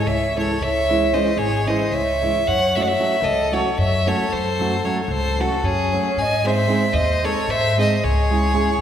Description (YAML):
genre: balkan folk, Balkan wedding band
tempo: 226 BPM (eighths)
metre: 7/8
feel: straight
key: C# harmonic minor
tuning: A4 = 440 Hz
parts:
  - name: bright fiddle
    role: melody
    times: 0.0-8.8 s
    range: G#4 to G#5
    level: -22 LUFS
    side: equal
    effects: none
  - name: dark violin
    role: second line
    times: 0.0-8.8 s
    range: C#4 to D#5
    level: -23 LUFS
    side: left 1 dB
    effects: none
  - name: upright bass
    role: bass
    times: 0.1-8.8 s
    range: G#1 to G#2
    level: -24 LUFS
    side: equal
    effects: none
  - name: nylon-string guitar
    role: accompaniment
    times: 0.4-8.7 s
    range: E3 to G#4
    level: -24 LUFS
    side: right 2 dB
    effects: none
room: wet scoring stage reverb, RT60 1.6 s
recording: recorded in a church or concert hall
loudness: -17 LUFS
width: side -9 dB against mid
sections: 0.0-8.8 A section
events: none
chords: 0.0 C#m; 2.5 F#m; 6.2 G#; 8.0 C#m